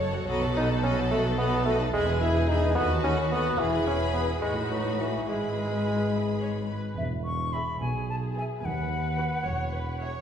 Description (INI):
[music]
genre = cinematic, playful, whimsical film cue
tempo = 72 BPM (dotted quarters)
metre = 6/8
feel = straight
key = E major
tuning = A4 = 441 Hz
[part]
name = warm studio violin section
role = melody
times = 0.0-10.2 s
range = F#4 to E5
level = -35 LUFS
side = left 3 dB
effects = none
[part]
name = warm studio violin section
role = second line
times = 0.0-10.2 s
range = F#4 to B5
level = -36 LUFS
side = left 2 dB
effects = none
[part]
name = rich studio viola section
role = accompaniment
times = 0.0-10.2 s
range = B3 to C#5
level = -36 LUFS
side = right 2 dB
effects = none
[part]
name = warm studio cello section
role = bass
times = 0.0-10.1 s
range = D#2 to B2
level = -32 LUFS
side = right 1 dB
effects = none
[part]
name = warm studio double bass section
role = bass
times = 0.0-10.1 s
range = E1 to D#2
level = -33 LUFS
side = right 1 dB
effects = none
[part]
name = warm bassoon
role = accompaniment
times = 0.3-6.7 s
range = E3 to E4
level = -28 LUFS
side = equal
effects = none
[part]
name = silver concert flute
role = second line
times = 7.0-10.0 s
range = E5 to C#6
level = -32 LUFS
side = left 2 dB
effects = none
[part]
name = mellow tuba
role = bass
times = 7.0-10.1 s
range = E1 to D#2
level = -32 LUFS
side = right 2 dB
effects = none
[sound]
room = wet scoring stage reverb, RT60 1.6 s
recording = heard from further back in the room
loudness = -25 LUFS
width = side -8 dB against mid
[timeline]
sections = 0.0-7.0 A section; 7.0-10.2 A section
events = none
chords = 0.3 B7; 1.9 E; 2.8 B7/D#; 3.6 E; 4.4 B7/A; 5.3 E/G#; 7.0 E; 8.6 B/D#; 9.5 E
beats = | 0.29 1.11 | 1.93 2.75 | 3.59 4.42 | 5.27 6.13 | 6.98 7.81 | 8.64 9.46